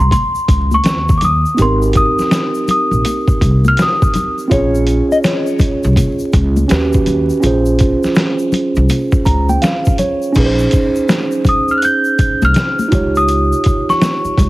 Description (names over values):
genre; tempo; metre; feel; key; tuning
hip hop, jazz-hop; 82 BPM; 4/4; swing 63% on 16ths; Bb dorian; A4 = 439 Hz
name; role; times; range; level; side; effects
celesta; melody; 0.0-4.4, 11.5-14.5 s; C6 to G6; -16 LUFS; left 1 dB; none
upright bass; bass; 0.0-14.5 s; Ab1 to Eb2; -15 LUFS; equal; none
trip hop sampler-style drum kit; drums; 0.1-14.5 s; crash cymbal, hi-hat, kick drum, snare drum; -16 LUFS; equal; none
congas and tube shaker; percussion; 0.1-14.5 s; none; -24 LUFS; left 3 dB; none
mellow tine electric piano; accompaniment; 1.5-14.5 s; Cb4 to Bb5; -16 LUFS; right 2 dB; none
mellow electric guitar; second line; 4.5-6.7 s; Db5 to Eb5; -20 LUFS; left 4 dB; none
room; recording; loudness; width
small room ambience; heavily compressed radio sound, multiband compression, vinyl crackle; -11 LUFS; side -18 dB against mid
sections
0.0-10.4 A section; 10.4-14.5 B section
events
break 0.0-1.6; tine electric piano fill 8.9-10.4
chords
0.0 Bbmadd9 (rootless); 0.8 Dbsus2/Eb; 1.6 Abmaj9; 4.5 Bbm7; 6.7 Eb7alt; 7.4 Bbm9; 10.4 Bbm11 (rootless); 12.9 Dbadd9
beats
0.12 0.85 | 1.58 2.31 3.04 3.77 | 4.51 5.24 5.97 6.70 | 7.43 8.16 8.90 9.63 | 10.36 11.09 11.82 12.55 | 13.29 14.02